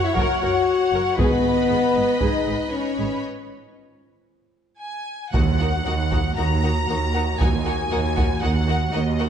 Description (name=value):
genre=cinematic, epic orchestral film score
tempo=117 BPM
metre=4/4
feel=straight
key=G# minor, Eb minor from 5.3 s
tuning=A4 = 440 Hz
part: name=warm symphonic violin section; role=melody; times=0.0-9.2 s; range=B4 to Bb5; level=-29 LUFS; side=left 2 dB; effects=none
part: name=warm symphonic violin section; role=second line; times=0.0-9.3 s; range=Bb4 to B5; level=-29 LUFS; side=left 3 dB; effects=none
part: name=rich symphonic viola section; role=accompaniment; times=0.0-9.3 s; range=Eb4 to C#5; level=-30 LUFS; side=right 1 dB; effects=none
part: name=mellow French horn section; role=sustained chords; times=0.0-9.3 s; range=Bb3 to F#4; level=-24 LUFS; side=left 3 dB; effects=none
part: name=rich symphonic double bass section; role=bass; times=0.2-9.3 s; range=F#1 to Eb2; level=-27 LUFS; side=right 4 dB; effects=none
part: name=warm studio cello section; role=bass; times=0.2-9.3 s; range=Eb2 to G#2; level=-27 LUFS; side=right 3 dB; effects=none
part: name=solo taiko drums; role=drums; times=0.2-8.6 s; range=none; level=-25 LUFS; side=right 1 dB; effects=none
part: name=timpani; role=percussion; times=1.2-1.9, 5.3-6.1 s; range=G#2 to Eb3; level=-32 LUFS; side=right 2 dB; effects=none
room=wet scoring stage reverb, RT60 1.7 s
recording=nothing above 10.4 kHz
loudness=-19 LUFS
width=side -8 dB against mid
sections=0.0-5.3 A section; 5.3-9.3 B section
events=break 3.2-5.3; drum fill 4.6-5.3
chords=0.0 F#; 1.2 G#m; 3.2 N.C.; 5.3 Ebm